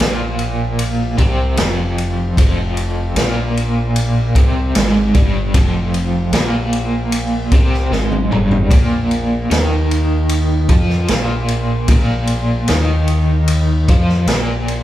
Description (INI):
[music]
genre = psychedelic rock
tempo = 76 BPM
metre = 4/4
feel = straight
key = F minor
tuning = A4 = 440 Hz
[part]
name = crunchy overdriven guitar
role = riff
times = 0.0-14.8 s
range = F2 to F4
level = -18 LUFS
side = equal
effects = tremolo
[part]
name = growling picked electric bass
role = bass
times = 0.0-14.8 s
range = F1 to F2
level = -19 LUFS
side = equal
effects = overdrive
[part]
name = vintage drum kit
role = drums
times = 0.0-14.8 s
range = kick drum, ride cymbal, snare drum, toms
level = -17 LUFS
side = equal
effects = none
[sound]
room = light reverb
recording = band playing live in one room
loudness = -13 LUFS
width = side -13 dB against mid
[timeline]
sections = 0.0-14.8 A section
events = drum fill 7.9-8.7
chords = 0.0 Fm; 8.7 Bb5